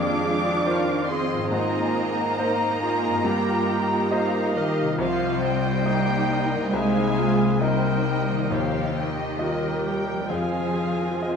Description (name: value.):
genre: cinematic.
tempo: 69 BPM.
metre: 4/4.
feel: rubato.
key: Eb major.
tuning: A4 = 440 Hz.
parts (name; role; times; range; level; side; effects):
muted studio violin section; melody; 0.0-11.4 s; Eb5 to D6; -29 LUFS; equal; none.
mellow clarinet; second line; 0.0-11.4 s; Eb4 to C5; -31 LUFS; left 1 dB; none.
muted studio violin section; second line; 0.0-11.4 s; F4 to Ab5; -32 LUFS; left 2 dB; none.
bright concert grand piano; accompaniment; 0.0-11.4 s; C2 to Eb5; -29 LUFS; equal; none.
muted studio viola section; accompaniment; 0.0-11.4 s; G3 to G4; -29 LUFS; right 2 dB; none.
concert harp; arpeggios; 0.0-11.4 s; G2 to F5; -29 LUFS; left 6 dB; none.
muted studio cello section; bass; 0.0-11.4 s; Eb3 to D4; -28 LUFS; right 4 dB; none.
room: wet scoring stage reverb, RT60 2.0 s.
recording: minimal, uncompressed stereo recording.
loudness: -21 LUFS.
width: side -6 dB against mid.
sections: 0.0-11.4 A section.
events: none.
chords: 0.0 Fm7; 1.5 Abadd9; 3.3 Ebadd9/G; 5.0 Cm; 6.7 Abadd9/C; 8.5 Ebadd9; 10.3 Fm7.